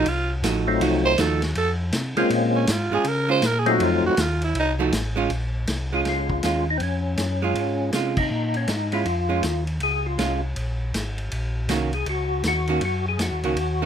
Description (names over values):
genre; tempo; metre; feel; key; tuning
soul jazz organ trio; 160 BPM; 4/4; swing 64% on 8ths; Bb minor; A4 = 439 Hz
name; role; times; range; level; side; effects
growling tenor saxophone; melody; 0.0-4.7 s; Db4 to C5; -23 LUFS; right 3 dB; none
archtop guitar, miked and amplified; accompaniment; 0.0-13.9 s; Eb3 to Gb4; -24 LUFS; right 6 dB; none
mellow tonewheel organ; bass; 0.0-13.9 s; Ab1 to Db3; -26 LUFS; equal; slow rotary speaker
vintage drum kit; drums; 0.1-13.7 s; crash cymbal, hi-hat, kick drum, ride cymbal, snare drum; -29 LUFS; left 1 dB; none
percussive tonewheel organ; melody; 0.7-13.9 s; Gb3 to Ab4; -24 LUFS; left 4 dB; chorus vibrato, slow rotary speaker
room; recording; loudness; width
light reverb; close, detailed microphones; -20 LUFS; side -8 dB against mid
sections
0.0-5.3 A section; 5.3-13.9 B section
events
tenor saxophone solo 0.0-5.3; band accent 8.1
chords
0.0 F7b9; 2.3 Bbm7; 3.8 F7b9; 5.3 Bbm7; 11.3 Ebm7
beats
0.07 0.44 | 0.81 1.19 1.56 1.94 | 2.31 2.69 3.06 3.43 | 3.81 4.18 4.56 4.93 | 5.31 5.68 6.06 6.43 | 6.81 7.18 7.56 7.94 | 8.31 8.69 9.06 9.44 | 9.81 10.19 10.56 10.94 | 11.32 11.69 12.07 12.44 | 12.82 13.19 13.57